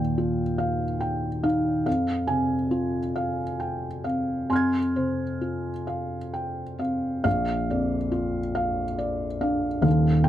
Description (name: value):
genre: neoclassical minimalist piano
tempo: 45 BPM (dotted quarters)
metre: 6/8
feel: uneven beats, rubato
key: unclear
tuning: A4 = 440 Hz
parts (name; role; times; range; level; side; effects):
- felt-muted upright piano; solo; 0.0-10.3 s; Eb1 to Ab6; -23 LUFS; equal; none
room: light reverb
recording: close, detailed microphones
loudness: -24 LUFS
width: side -12 dB against mid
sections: 0.0-7.3 A section; 7.3-10.3 A section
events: none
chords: 0.0 Ebadd9; 1.9 Fm; 7.3 Bb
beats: 0.59 | 1.87 3.16 | 4.51 5.89 | 7.26 8.57 | 9.86